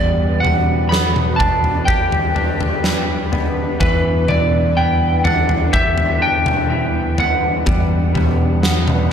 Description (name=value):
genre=post-rock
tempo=62 BPM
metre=4/4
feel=straight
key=unclear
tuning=A4 = 440 Hz
part: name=electric slide guitar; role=melody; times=0.0-9.1 s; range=B4 to B5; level=-20 LUFS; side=right 1 dB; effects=digital delay
part: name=airy breathy pad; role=sustained chords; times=0.0-9.1 s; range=G3 to F#5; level=-28 LUFS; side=right 1 dB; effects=chorus
part: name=twangy electric guitar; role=arpeggios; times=0.0-9.1 s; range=E3 to G4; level=-24 LUFS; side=left 2 dB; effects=lush chorus, digital delay
part: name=fingered electric bass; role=bass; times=0.0-9.1 s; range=E2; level=-20 LUFS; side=equal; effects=none
part: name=huge arena drum kit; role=drums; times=0.4-9.1 s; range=kick drum, snare drum, toms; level=-19 LUFS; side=equal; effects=none
room=light reverb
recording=none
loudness=-14 LUFS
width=side -8 dB against mid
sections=0.0-9.1 A section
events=none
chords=0.0 Gmaj7/E; 3.8 Em7; 7.7 Gmaj7/E